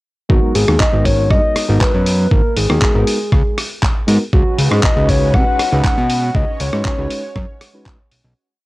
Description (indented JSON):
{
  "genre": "nu-disco, nu disco",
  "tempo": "119 BPM",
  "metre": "4/4",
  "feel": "straight",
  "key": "G# minor",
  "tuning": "A4 = 440 Hz",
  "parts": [
    { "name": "soft octave-layered synth lead", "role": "melody", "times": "0.3-7.6 s", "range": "F#4 to F#5", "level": "-19 LUFS", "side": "left 1 dB", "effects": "chorus, cassette tape" },
    { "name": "reed electric piano", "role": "accompaniment", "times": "0.3-8.0 s", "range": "G#3 to B4", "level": "-22 LUFS", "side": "equal", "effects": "fast tremolo, cassette tape" },
    { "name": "fat analog bass", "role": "bass", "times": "0.3-8.3 s", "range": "G#1 to C#3", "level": "-16 LUFS", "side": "equal", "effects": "none" },
    { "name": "electronic kick drum", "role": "drums", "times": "0.3-8.0 s", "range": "none", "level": "-16 LUFS", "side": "equal", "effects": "studio reverb, cassette tape" },
    { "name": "dusty soul sampler-style drum kit", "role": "drums", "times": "0.6-8.2 s", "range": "handclaps, hi-hat, rim click", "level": "-22 LUFS", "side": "equal", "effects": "studio reverb, cassette tape" },
    { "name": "lush unison pad", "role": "sustained chords", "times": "4.3-8.3 s", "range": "G#3 to C#5", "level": "-29 LUFS", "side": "right 1 dB", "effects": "chorus, sidechain pumping, cassette tape" }
  ],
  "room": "light reverb",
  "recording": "home recording on cassette",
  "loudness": "-12 LUFS",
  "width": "side -19 dB against mid",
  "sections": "0.3-8.4 drop",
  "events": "drop 0.3-8.4; fade-out 5.7-8.4",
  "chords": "0.3 G#m9; 4.3 C#7sus4"
}